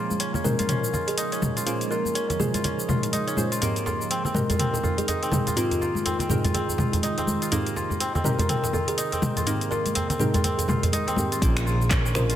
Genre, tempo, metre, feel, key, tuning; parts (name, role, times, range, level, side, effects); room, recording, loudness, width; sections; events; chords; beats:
afro house; 123 BPM; 4/4; swing 60% on 16ths; A4 = 440 Hz
ethereal airy pad; sustained chords; 0.0-12.4 s; C3 to F4; -34 LUFS; right 2 dB; ensemble chorus, built-in reverb, phaser, sidechain pumping
kora; arpeggios; 0.0-12.4 s; Bb3 to F4; -30 LUFS; equal; sidechain pumping, low-pass filter, digital delay
deep mellow chord stab; stabs; 0.0-12.4 s; Ab2 to G5; -32 LUFS; right 1 dB; chorus, sidechain pumping, digital delay
deep house drum kit; drums; 0.1-12.4 s; finger snaps, handclaps, hi-hat, shaker, toms; -28 LUFS; left 1 dB; overdrive
congas; percussion; 0.1-11.3 s; -30 LUFS; left 2 dB
kalimba; melody; 0.4-12.3 s; F4 to Bb4; -30 LUFS; equal; vintage 12-bit sampler grit, digital delay
djembe; percussion; 3.6-11.3 s; -30 LUFS; right 1 dB
smooth synth bass; bass; 11.4-12.4 s; Bb1; -24 LUFS; equal; tube saturation, sidechain pumping
electronic kick drum; drums; 11.4-12.0 s; -23 LUFS; equal; overdrive
light reverb; -22 LUFS; side -11 dB against mid
0.0-11.4 A section
filter sweep on ambient pad 0.0-11.4
0.0 Bbm7; 3.6 Abmaj7; 11.4 Bbm7
0.20 0.69 1.18 | 1.66 2.15 2.64 3.13 | 3.62 4.10 4.59 5.08 | 5.57 6.05 6.54 7.03 | 7.52 8.01 8.49 8.98 | 9.47 9.96 10.45 10.93 | 11.42 11.91